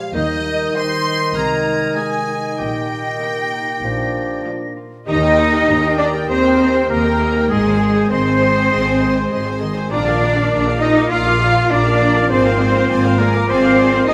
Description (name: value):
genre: cinematic, playful, whimsical film cue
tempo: 99 BPM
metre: 4/4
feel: straight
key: Eb major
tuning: A4 = 440 Hz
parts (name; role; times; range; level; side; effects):
- rich studio violin section; melody; 0.0-14.1 s; Eb5 to C6; -30 LUFS; equal; none
- dark French horn section; sustained chords; 0.0-14.1 s; G3 to Ab4; -28 LUFS; equal; none
- concert harp; arpeggios; 0.0-14.1 s; Ab2 to Eb6; -28 LUFS; equal; none
- bright clarinet; second line; 0.1-14.1 s; Ab4 to F5; -28 LUFS; equal; none
- bright silver concert flute; second line; 0.1-14.1 s; Ab4 to Bb6; -25 LUFS; equal; none
- warm oboe; second line; 0.1-14.1 s; Eb4 to F5; -26 LUFS; equal; none
- mellow bassoon; accompaniment; 0.1-4.7 s; Eb3 to F3; -27 LUFS; equal; none
- rich studio cello section; bass; 0.1-14.1 s; Eb2 to F4; -20 LUFS; equal; none
- rich studio double bass section; bass; 0.1-14.1 s; Ab1 to Eb2; -24 LUFS; equal; none
- warm studio violin section; second line; 0.8-14.1 s; D4 to F5; -28 LUFS; equal; none
- bright symphonic viola section; accompaniment; 0.8-14.1 s; Eb3 to G5; -29 LUFS; equal; none
room: wet recital hall reverb, RT60 1.7 s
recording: none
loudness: -16 LUFS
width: mono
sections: 0.0-5.1 A section; 5.1-14.1 B section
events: none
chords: 0.1 Eb; 1.4 Ab/C; 2.6 Eb/Bb; 3.8 Bb; 5.1 Eb; 7.5 Ab; 9.9 Bb; 12.3 Bb7/Ab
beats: | 0.15 0.77 1.37 1.97 | 2.59 3.22 3.84 4.46 | 5.08 5.68 6.29 6.90 | 7.51 8.11 8.71 9.31 | 9.91 10.51 11.11 11.71 | 12.30 12.90 13.49 14.09